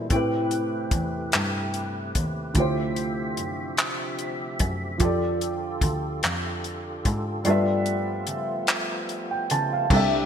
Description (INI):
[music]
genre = slow six-eight R&B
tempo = 49 BPM (dotted quarters)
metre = 6/8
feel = straight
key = unclear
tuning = A4 = 440 Hz
[part]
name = dark concert grand piano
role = accompaniment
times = 0.0-10.3 s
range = A2 to A5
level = -26 LUFS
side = right 1 dB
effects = lush chorus
[part]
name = percussive tonewheel organ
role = sustained chords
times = 0.0-10.3 s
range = C3 to E5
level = -34 LUFS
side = left 1 dB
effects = chorus vibrato, slow rotary speaker
[part]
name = warm cello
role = bass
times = 0.0-10.3 s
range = C2 to Db3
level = -29 LUFS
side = left 1 dB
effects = none
[part]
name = warm soul drum kit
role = drums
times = 0.1-10.1 s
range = crash cymbal, handclaps, hi-hat, kick drum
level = -25 LUFS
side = left 1 dB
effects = gated reverb
[sound]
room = moderate lush hall reverb, RT60 2.5 s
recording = bright 1980s-style digital production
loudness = -23 LUFS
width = side -8 dB against mid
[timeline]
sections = 0.1-9.9 A section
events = kick muted 7.5-9.9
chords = 0.1 Am9; 2.6 Dm11; 5.0 F69; 7.5 G13